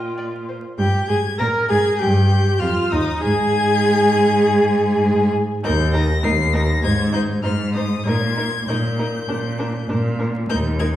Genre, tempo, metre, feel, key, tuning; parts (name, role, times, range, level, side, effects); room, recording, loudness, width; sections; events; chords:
quick classical-period movement for string quartet; 99 BPM; 4/4; straight; Eb major; A4 = 440 Hz
clear violin; melody; 0.0-10.9 s; G5 to C7; -26 LUFS; left 7 dB
rich viola; accompaniment; 0.0-10.9 s; D4 to Bb4; -22 LUFS; right 2 dB
rich cello; bass; 0.0-11.0 s; Eb2 to Bb2; -19 LUFS; equal
rich violin; second line; 0.2-10.9 s; Eb4 to D5; -25 LUFS; left 2 dB
wet recital hall reverb, RT60 1.4 s; heard from further back in the room, vinyl crackle; -16 LUFS; side -12 dB against mid
0.8-11.0 A section
0.0 Bb5; 0.8 Eb; 3.2 N.C.; 5.6 Eb5; 6.8 Ab; 8.1 Eb/Bb; 9.3 Bb